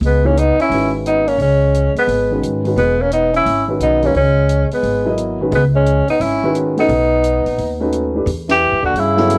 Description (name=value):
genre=modal jazz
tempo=175 BPM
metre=4/4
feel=swing 64% on 8ths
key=C# dorian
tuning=A4 = 440 Hz
part: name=bright trombone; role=second line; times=0.0-9.4 s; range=C#3 to C#4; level=-24 LUFS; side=equal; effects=none
part: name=upright bass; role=bass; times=0.0-9.4 s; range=E1 to G#2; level=-21 LUFS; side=equal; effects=none
part: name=compact cocktail drum kit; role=drums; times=0.0-9.4 s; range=hi-hat, ride cymbal, snare drum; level=-35 LUFS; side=equal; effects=none
part: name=mellow tenor saxophone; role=melody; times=0.1-9.4 s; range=B3 to G4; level=-18 LUFS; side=equal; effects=none
part: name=warm grand piano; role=accompaniment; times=0.2-9.4 s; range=D#3 to D#5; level=-21 LUFS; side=equal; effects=none
room=light reverb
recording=worn, warbling old tape, cassette tape, warbly pitch drift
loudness=-16 LUFS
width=mono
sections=0.0-8.3 A section; 8.3-9.4 B section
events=band accent 8.4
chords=0.0 C#m11; 6.9 B7; 8.3 Em69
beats=| 0.02 0.37 0.71 1.05 | 1.40 1.74 2.08 2.43 | 2.77 3.11 3.46 3.80 | 4.14 4.49 4.83 5.17 | 5.52 5.86 6.20 6.55 | 6.89 7.23 7.58 7.92 | 8.26 8.61 8.95 9.29